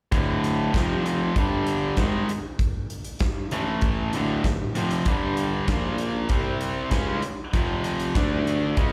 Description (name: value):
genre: classic rock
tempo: 97 BPM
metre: 4/4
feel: straight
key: unclear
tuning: A4 = 440 Hz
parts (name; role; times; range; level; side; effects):
- overdriven electric guitar; riff; 0.1-8.9 s; D2 to D4; -32 LUFS; equal; slapback echo
- tight distorted guitar; riff; 0.1-8.9 s; D2 to D4; -29 LUFS; equal; distortion
- clear tuba; bass; 0.1-8.9 s; D1 to D2; -33 LUFS; equal; none
- huge arena drum kit; drums; 0.1-8.9 s; hi-hat, kick drum, snare drum; -28 LUFS; equal; none
room: studio reverb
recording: live gig heard through the venue's PA, club reverb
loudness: -25 LUFS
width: mono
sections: 0.1-8.9 A section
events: none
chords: 0.1 D5; 0.7 F5; 1.4 G5; 2.0 G#5; 3.5 A5; 4.1 D5; 5.1 G5; 5.7 Bb5; 6.3 C5; 6.9 C#5; 7.5 F5; 8.2 D5